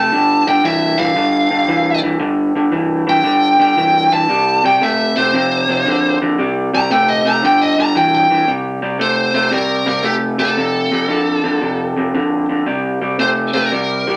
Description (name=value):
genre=blues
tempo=115 BPM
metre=4/4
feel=swing 67% on 8ths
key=C mixolydian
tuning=A4 = 441 Hz
part: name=biting lead guitar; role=melody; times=0.0-14.2 s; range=G4 to Bb5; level=-18 LUFS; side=equal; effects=overdrive
part: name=electric guitar through a small old amp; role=riff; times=0.0-14.2 s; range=F2 to A3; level=-18 LUFS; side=equal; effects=none
room=wet studio reverb, RT60 0.5 s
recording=nothing above 11.0 kHz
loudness=-15 LUFS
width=mono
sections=0.0-8.5 A section; 8.5-14.2 B section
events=lead electric guitar solo 0.0-8.5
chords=0.1 G5; 4.3 C5; 5.3 F5; 6.4 C5; 7.4 G5; 8.5 C5; 10.6 F; 12.7 C5